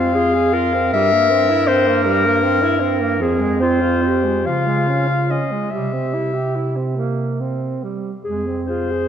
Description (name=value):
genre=classical, lyrical piece for single-reed quartet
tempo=46-53 BPM (dotted quarters)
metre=6/8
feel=rubato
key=F minor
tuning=A4 = 437 Hz
part: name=clear clarinet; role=melody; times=0.0-9.1 s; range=Bb4 to F5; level=-19 LUFS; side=left 5 dB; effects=none
part: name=clear alto saxophone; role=second line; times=0.0-9.1 s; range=F3 to Ab4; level=-23 LUFS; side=right 6 dB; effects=none
part: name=warm clarinet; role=accompaniment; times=0.0-9.1 s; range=F4 to Bb4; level=-23 LUFS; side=equal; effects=none
part: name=mellow bass clarinet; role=bass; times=0.0-9.1 s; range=F2 to Db3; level=-21 LUFS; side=right 1 dB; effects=none
room=wet concert hall reverb, RT60 2.6 s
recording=none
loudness=-16 LUFS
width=side -8 dB against mid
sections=0.0-9.1 A section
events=none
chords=0.0 Fm; 0.9 C7/G; 3.2 Fm; 4.5 Db; 5.7 C; 8.2 Fm